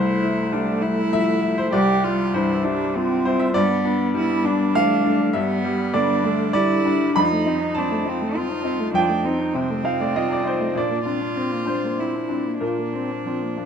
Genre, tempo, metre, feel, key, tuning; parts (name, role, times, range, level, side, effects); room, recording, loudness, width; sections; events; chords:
neoclassical piano and strings; 99 BPM; 3/4; rubato; C major; A4 = 439 Hz
clear cello; second line; 0.0-13.7 s; B3 to G4; -25 LUFS; right 4 dB
bright upright piano; accompaniment; 0.0-13.7 s; C2 to B5; -21 LUFS; left 2 dB
dark viola; accompaniment; 0.0-13.7 s; E3 to Eb4; -26 LUFS; right 1 dB
light reverb; minimal, uncompressed stereo recording; -19 LUFS; side -7 dB against mid
0.0-13.7 A section
0.0 C; 3.5 G; 7.2 F7; 10.8 Bbadd9